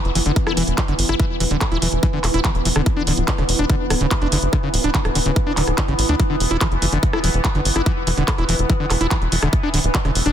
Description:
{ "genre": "psychedelic trance", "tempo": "144 BPM", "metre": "4/4", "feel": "straight", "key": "unclear", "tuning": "A4 = 442 Hz", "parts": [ { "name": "bubbling stepped-filter texture", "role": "sustained chords", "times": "0.0-10.3 s", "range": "E3 to B3", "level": "-24 LUFS", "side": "right 1 dB", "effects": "chorus, built-in reverb, vintage 12-bit sampler grit, sidechain pumping" }, { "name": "tight sequencer bass", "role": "bass", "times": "0.1-10.3 s", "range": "D1 to D2", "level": "-21 LUFS", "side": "equal", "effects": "none" }, { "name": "drum and bass drum kit", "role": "drums", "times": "0.1-10.3 s", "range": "handclaps, hi-hat, rim click", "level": "-24 LUFS", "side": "right 1 dB", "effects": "none" }, { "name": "screaming distorted acid line", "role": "riff", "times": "0.2-10.3 s", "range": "C#3 to E4", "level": "-23 LUFS", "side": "moving between left 4 dB and right 2 dB", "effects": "distortion, chorus, auto-pan, sidechain pumping, ping-pong delay" }, { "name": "electronic kick drum", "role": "drums", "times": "0.4-10.0 s", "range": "none", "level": "-20 LUFS", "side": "equal", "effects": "none" } ], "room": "light reverb", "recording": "dense, heavily limited modern master", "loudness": "-16 LUFS", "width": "side -10 dB against mid", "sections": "0.0-10.3 A section", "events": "none", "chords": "0.0 E5; 2.9 D5; 6.2 E5; 9.5 D5", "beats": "0.36 0.78 | 1.20 1.61 2.03 2.45 | 2.86 3.28 3.70 4.11 | 4.53 4.95 5.36 5.78 | 6.20 6.61 7.03 7.45 | 7.86 8.28 8.70 9.11 | 9.53 9.95" }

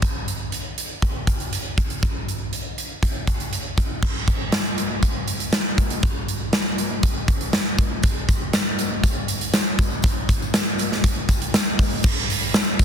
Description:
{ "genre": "pop", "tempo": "120 BPM", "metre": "4/4", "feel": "straight", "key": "none", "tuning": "none", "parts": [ { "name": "huge arena drum kit", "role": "drums", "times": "0.0-12.8 s", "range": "crash cymbal, hi-hat, kick drum, snare drum", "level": "-20 LUFS", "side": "equal", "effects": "none" }, { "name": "tambourine", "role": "percussion", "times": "8.0-12.8 s", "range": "none", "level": "-37 LUFS", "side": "left 7 dB", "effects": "none" } ], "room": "little or no reverb", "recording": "dense, heavily limited modern master", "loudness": "-20 LUFS", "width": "side -8 dB against mid", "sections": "0.0-4.0 A section; 4.0-12.0 B section", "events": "none", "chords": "none", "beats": "| 0.03 0.53 1.03 1.53 | 2.03 2.53 3.03 3.53 | 4.03 4.53 5.03 5.53 | 6.03 6.53 7.03 7.53 | 8.04 8.54 9.04 9.54 | 10.04 10.54 11.04 11.54 | 12.04 12.54" }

